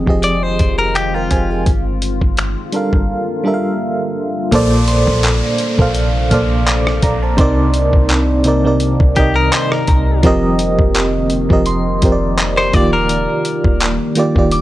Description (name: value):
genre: contemporary R&B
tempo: 84 BPM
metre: 4/4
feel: swing 54% on 16ths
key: Bb major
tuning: A4 = 440 Hz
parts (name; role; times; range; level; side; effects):
- FM electric piano with tremolo; accompaniment; 0.0-14.6 s; Bb2 to D6; -16 LUFS; right 1 dB; none
- deep dark ambient pad; sustained chords; 0.0-14.6 s; C3 to A4; -25 LUFS; left 2 dB; chorus, built-in reverb
- clean 808-style bass; bass; 0.0-14.6 s; Eb1 to C2; -18 LUFS; equal; none
- dusty soul sampler-style drum kit; drums; 0.1-14.6 s; finger snaps, handclaps, hi-hat, kick drum, rim click; -17 LUFS; equal; none
- direct-recorded clean electric guitar; arpeggios; 0.2-1.6, 9.2-14.0 s; F4 to D5; -18 LUFS; left 2 dB; tape echo
- downlifter; sound effects; 4.5-10.2 s; none; -27 LUFS; equal; none
- soft synth bell; texture; 4.9-14.6 s; Bb5 to F6; -27 LUFS; equal; chorus, tape echo
room: little or no reverb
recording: dry, gritty hardware recording, cassette tape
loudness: -12 LUFS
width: side -15 dB against mid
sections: 0.0-4.5 A section; 4.5-14.6 B section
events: none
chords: 0.0 Fm7; 1.7 Gm7; 4.5 Bbmaj9; 7.4 Cm7; 10.2 F7sus4; 12.7 Ebmaj7